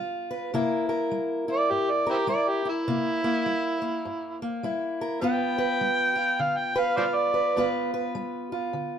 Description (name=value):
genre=acoustic country blues, solo or duo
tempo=102 BPM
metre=4/4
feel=swing 61% on 8ths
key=G mixolydian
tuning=A4 = 440 Hz
part: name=fingerpicked steel-string acoustic guitar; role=accompaniment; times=0.0-9.0 s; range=G2 to B4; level=-27 LUFS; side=equal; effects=none
part: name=overdriven harmonica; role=melody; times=1.5-7.7 s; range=C4 to G5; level=-25 LUFS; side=equal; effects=none
room=wet studio reverb, RT60 0.8 s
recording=band playing live in one room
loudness=-24 LUFS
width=side -8 dB against mid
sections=0.0-9.0 A section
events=harmonica solo 0.0-9.0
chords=0.0 G7; 0.5 C7; 5.2 G7